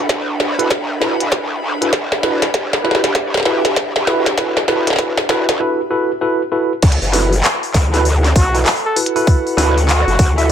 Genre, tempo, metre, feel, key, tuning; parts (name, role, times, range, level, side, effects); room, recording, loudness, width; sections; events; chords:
glitch hop; 98 BPM; 4/4; swing 63% on 16ths; A4 = 440 Hz
growl bass; bass; 0.0-10.5 s; E1 to D2; -18 LUFS; equal; chorus, tube saturation, high-pass filter
airy breathy pad; texture; 0.0-10.5 s; D4 to B5; -25 LUFS; right 1 dB; chorus, sidechain pumping
electronic kick drum; drums; 0.1-10.3 s; -14 LUFS; equal; high-pass filter on kick, high-pass filter on room
glitchy drum kit; drums; 0.1-10.5 s; crash cymbal, handclaps, hi-hat, snare drum; -18 LUFS; equal
tine electric piano; stabs; 0.6-10.5 s; E4 to E5; -19 LUFS; right 1 dB; medium stereo tremolo, sidechain pumping, low-pass filter, ping-pong delay
dark trumpet; melody; 8.4-10.4 s; F#4 to A4; -20 LUFS; equal; ping-pong delay
light reverb; -13 LUFS; side -9 dB against mid
0.0-6.8 A section; 6.8-10.5 B section
build-up 0.0-6.8; drum fill 0.0-5.6; drop 6.8-10.5
0.0 D6; 1.9 Em7; 6.8 D6